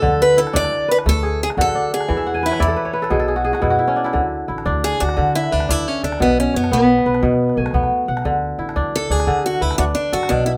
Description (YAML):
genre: west african traditional, West African string and xylophone music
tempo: 117 BPM (dotted quarters)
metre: 12/8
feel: straight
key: D lydian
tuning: A4 = 440 Hz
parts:
  - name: picked acoustic archtop guitar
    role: melody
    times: 0.0-10.5 s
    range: B3 to D5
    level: -21 LUFS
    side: equal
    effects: none
  - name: kora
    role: arpeggios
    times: 0.0-10.6 s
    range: B2 to G#5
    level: -22 LUFS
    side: equal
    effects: none
  - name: upright bass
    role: bass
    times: 0.0-10.6 s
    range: A1 to D3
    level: -26 LUFS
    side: equal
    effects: none
  - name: calabash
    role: percussion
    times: 0.0-10.4 s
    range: none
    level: -29 LUFS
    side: equal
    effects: none
room: light reverb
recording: none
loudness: -18 LUFS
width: mono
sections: 0.0-4.1 A section; 4.1-10.6 B section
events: kora fill 2.2-4.1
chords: 0.0 D; 2.1 E; 3.1 B5; 4.1 D; 6.2 B5; 8.3 D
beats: | 0.03 0.55 1.06 1.58 | 2.09 2.61 3.12 3.63 | 4.15 4.66 5.18 5.69 | 6.20 6.71 7.23 7.74 | 8.25 8.76 9.27 9.78 | 10.29